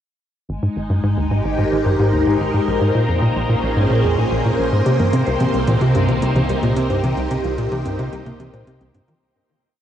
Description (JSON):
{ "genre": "ambient, sequencer-driven space music", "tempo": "110 BPM", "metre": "4/4", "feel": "straight", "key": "C phrygian", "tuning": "A4 = 440 Hz", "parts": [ { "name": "phased string machine", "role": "sustained chords", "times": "0.5-9.2 s", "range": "Bb2 to C5", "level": "-20 LUFS", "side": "equal", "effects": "ensemble chorus, phaser" }, { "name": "tight sequencer bass", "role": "riff", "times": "0.5-9.1 s", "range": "Ab1 to Eb3", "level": "-19 LUFS", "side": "equal", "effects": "analog chorus, ping-pong delay" }, { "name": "analog drone", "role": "bass", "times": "1.0-9.2 s", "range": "Ab1 to C2", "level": "-30 LUFS", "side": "equal", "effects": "chorus" }, { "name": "bubbling stepped-filter texture", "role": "texture", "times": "1.1-9.2 s", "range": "G5", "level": "-36 LUFS", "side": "right 2 dB", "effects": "chorus, built-in reverb" }, { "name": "soft round pluck", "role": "arpeggios", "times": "4.9-9.2 s", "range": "Bb3 to C5", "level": "-26 LUFS", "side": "equal", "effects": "chorus, auto-pan, ping-pong delay" }, { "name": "soft vintage rhythm box", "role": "percussion", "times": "4.9-9.2 s", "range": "hi-hat, toms", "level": "-31 LUFS", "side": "right 1 dB", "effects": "overdrive, ping-pong delay" } ], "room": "wet shimmer reverb, RT60 8.2 s", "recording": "worn, warbling old tape, cassette tape, warbly pitch drift, nothing above 10.7 kHz", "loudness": "-16 LUFS", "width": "side -10 dB against mid", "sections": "0.5-9.2 A section", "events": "fade-in on synth texture 0.5-9.2; fade-out 6.3-9.2", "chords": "0.5 Abmaj7; 2.7 Bbm7; 4.9 Cm7" }